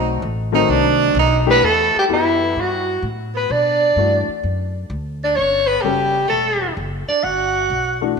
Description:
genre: modal jazz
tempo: 128 BPM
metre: 4/4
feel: swing 68% on 8ths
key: E dorian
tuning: A4 = 440 Hz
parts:
  - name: bright tenor saxophone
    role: second line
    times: 0.0-8.0 s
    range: E3 to F#4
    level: -22 LUFS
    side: right 7 dB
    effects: none
  - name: warm upright piano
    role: accompaniment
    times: 0.0-8.2 s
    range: D#3 to A4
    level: -22 LUFS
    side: left 10 dB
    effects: none
  - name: upright bass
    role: bass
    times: 0.0-8.2 s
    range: E1 to B2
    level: -24 LUFS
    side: left 1 dB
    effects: none
  - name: growling soprano saxophone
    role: melody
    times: 1.5-8.0 s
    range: E4 to F#5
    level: -17 LUFS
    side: equal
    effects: none
room: wet echo chamber reverb, RT60 1.9 s, small room reverb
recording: 1960s-style stereo with parts hard left and right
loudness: -15 LUFS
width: side -5 dB against mid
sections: 0.0-1.6 A section; 1.6-8.2 B section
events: tenor saxophone solo 0.0-1.6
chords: 0.0 B7b9; 1.6 Em9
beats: 0.23 0.70 1.16 | 1.63 2.10 2.56 3.03 | 3.50 3.97 4.44 4.90 | 5.37 5.84 6.31 6.78 | 7.24 7.71 8.18

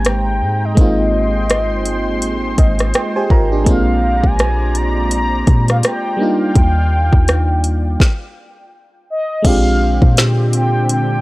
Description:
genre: contemporary R&B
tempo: 83 BPM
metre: 4/4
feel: swing 58% on 16ths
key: unclear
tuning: A4 = 444 Hz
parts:
  - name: mellow horn-like synth lead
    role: melody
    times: 0.0-11.2 s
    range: Eb5 to Bb5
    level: -21 LUFS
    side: left 1 dB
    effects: chorus
  - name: FM electric piano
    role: accompaniment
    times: 0.0-11.2 s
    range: G3 to Bb5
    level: -19 LUFS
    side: right 1 dB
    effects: chorus
  - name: lush unison pad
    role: sustained chords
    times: 0.0-11.2 s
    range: D3 to C6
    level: -26 LUFS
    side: equal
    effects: chorus, sidechain pumping
  - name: warm 808-style bass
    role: bass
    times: 0.0-11.2 s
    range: G1 to Bb2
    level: -17 LUFS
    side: equal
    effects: none
  - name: smooth R&B drum kit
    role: drums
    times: 0.0-11.1 s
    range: crash cymbal, hi-hat, kick drum, rim click, snare drum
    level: -14 LUFS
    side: equal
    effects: none
room: little or no reverb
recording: dry, gritty hardware recording, cassette tape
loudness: -12 LUFS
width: side -19 dB against mid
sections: 0.0-9.4 A section; 9.4-11.2 B section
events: FM electric piano fill 2.2-3.7; stop 8.0-9.4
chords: 0.0 Abmaj9; 3.7 Bb9; 6.2 Ebmaj9; 9.4 Bb13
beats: 0.05 | 0.77 1.50 2.22 2.94 | 3.66 4.39 5.11 5.83 | 6.56 7.28 8.00 8.72 | 9.45 10.17 10.89

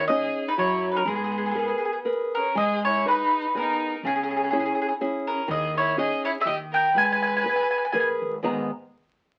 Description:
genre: italian folk, Italian serenade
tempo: 122 BPM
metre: 3/4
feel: swing 54% on 8ths, rubato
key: G# minor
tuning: A4 = 438 Hz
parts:
  - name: mandolin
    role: melody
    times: 0.0-8.1 s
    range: G#4 to G#5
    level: -26 LUFS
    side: equal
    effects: none
  - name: clear violin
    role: second line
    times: 0.0-8.2 s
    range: B3 to B4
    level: -34 LUFS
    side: equal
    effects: none
  - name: nylon-string guitar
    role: accompaniment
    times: 0.0-8.7 s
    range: G#2 to A#5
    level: -30 LUFS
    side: equal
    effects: none
  - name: upright bass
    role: bass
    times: 0.0-8.7 s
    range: G#1 to G#2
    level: -43 LUFS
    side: equal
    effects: none
room: moderate studio reverb, RT60 0.6 s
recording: very old 78 rpm record, vinyl crackle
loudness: -25 LUFS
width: mono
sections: 0.0-2.6 A section; 2.6-8.5 B section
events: none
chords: 0.0 D#7sus4; 0.6 F#5; 1.1 G#madd9; 2.6 G#m; 4.0 C#m; 5.5 D#7sus4; 6.5 D#; 7.0 G#madd9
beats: 0.09 0.58 | 1.06 1.56 2.06 | 2.56 3.06 3.55 | 4.04 4.53 5.01 | 5.49 5.98 6.46 | 6.96 7.45 7.95 | 8.45

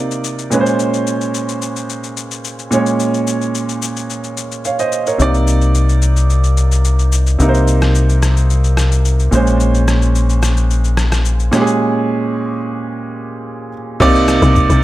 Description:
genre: amapiano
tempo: 109 BPM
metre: 4/4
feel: straight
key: unclear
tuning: A4 = 440 Hz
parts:
  - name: clear grand piano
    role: accompaniment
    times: 0.0-14.8 s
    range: Bb2 to F5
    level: -16 LUFS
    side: right 2 dB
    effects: none
  - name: trip hop sampler-style drum kit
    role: drums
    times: 0.1-14.8 s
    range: crash cymbal, kick drum, rim click, shaker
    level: -22 LUFS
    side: left 2 dB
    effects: none
  - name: deep dub fingered electric bass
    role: bass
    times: 5.2-11.5 s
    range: Bb1 to C2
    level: -12 LUFS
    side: left 1 dB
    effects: none
  - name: tight log drum bass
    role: bass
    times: 14.0-14.8 s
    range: C2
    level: -13 LUFS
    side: left 1 dB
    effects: none
room: digital ambience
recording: none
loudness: -12 LUFS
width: side -16 dB against mid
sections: 0.0-14.0 A section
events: break 11.8-14.0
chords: 0.0 Cm9; 0.5 Bbm9; 5.2 Cm9; 9.3 Bbm9; 14.0 Cm9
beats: 0.24 | 0.79 1.34 1.89 2.44 | 3.00 3.54 4.09 4.65 | 5.20 5.75 6.30 6.85 | 7.40 7.95 8.50 9.05 | 9.60 10.15 10.70 11.25 | 11.80 12.35 12.90 13.45 | 14.00 14.55

